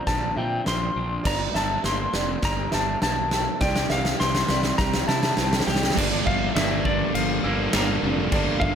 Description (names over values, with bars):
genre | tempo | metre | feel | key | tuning
post-rock | 102 BPM | 4/4 | straight | G dorian | A4 = 443 Hz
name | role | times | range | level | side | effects
clean lap steel guitar | melody | 0.0-8.8 s | D5 to C6 | -27 LUFS | left 1 dB | analog delay
clean electric guitar | arpeggios | 0.0-8.8 s | G2 to Bb4 | -32 LUFS | left 1 dB | analog delay
felt-muted upright piano | arpeggios | 0.0-8.8 s | D5 to E6 | -34 LUFS | right 6 dB | analog delay
fuzz fingered electric bass | bass | 0.1-8.8 s | F1 to C3 | -28 LUFS | equal | overdrive
huge arena drum kit | drums | 0.1-8.8 s | crash cymbal, kick drum, snare drum | -25 LUFS | equal | none
sludgy distorted guitar | riff | 6.0-8.8 s | G2 to D4 | -25 LUFS | right 2 dB | overdrive
room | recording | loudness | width
moderate large studio reverb, RT60 1.2 s, small room ambience | none | -21 LUFS | side -8 dB against mid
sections
0.0-6.0 A section; 6.0-8.8 B section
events
build-up 0.0-6.0; drum fill 0.0-6.0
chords
0.0 Bbadd9; 1.3 Gmadd9; 3.6 C; 6.0 Gm7